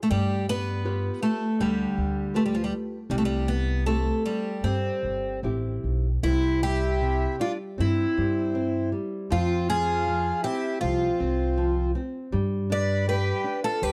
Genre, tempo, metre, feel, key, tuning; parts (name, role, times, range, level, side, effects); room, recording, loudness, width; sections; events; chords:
fado-style ballad; 79 BPM; 4/4; rubato; C major; A4 = 439 Hz
picked twelve-string acoustic guitar; melody; 0.0-13.9 s; F3 to D5; -28 LUFS; equal
nylon-string guitar; accompaniment; 0.1-13.9 s; C3 to B4; -35 LUFS; equal
upright bass; bass; 0.1-13.9 s; G1 to G2; -30 LUFS; equal
accordion; second line; 6.2-13.9 s; C4 to B4; -36 LUFS; equal
studio reverb; dry, close 1970s-style studio recording; -26 LUFS; mono
0.0-6.2 A section; 6.2-13.9 A section
0.1 G7; 3.1 C; 9.3 Fm; 12.3 G